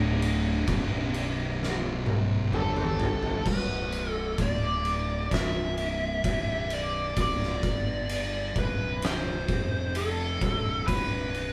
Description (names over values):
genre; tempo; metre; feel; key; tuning
stoner and doom metal; 65 BPM; 4/4; straight; B minor; A4 = 440 Hz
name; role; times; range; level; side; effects
thick fuzz guitar; riff; 0.0-3.4 s; B1 to G3; -35 LUFS; equal; distortion
thick fuzz guitar; riff; 0.0-3.4 s; B1 to G3; -36 LUFS; equal; none
fuzz fingered electric bass; bass; 0.0-11.5 s; B0 to G1; -35 LUFS; equal; overdrive
oversized low-tuned drum kit; drums; 0.2-11.5 s; crash cymbal, kick drum, ride cymbal, snare drum, toms; -32 LUFS; equal; none
fuzz lead guitar; melody; 2.6-11.5 s; A4 to E5; -33 LUFS; equal; wah, distortion
room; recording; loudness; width
light reverb; band playing live in one room; -28 LUFS; mono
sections
0.0-3.5 A section; 3.5-11.5 B section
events
drum fill 1.6-3.5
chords
0.0 D5; 0.7 B5; 2.5 G5; 3.5 N.C.; 5.3 C; 6.2 Bm; 7.6 G5; 8.6 N.C.; 9.5 F5; 10.4 Asus2/B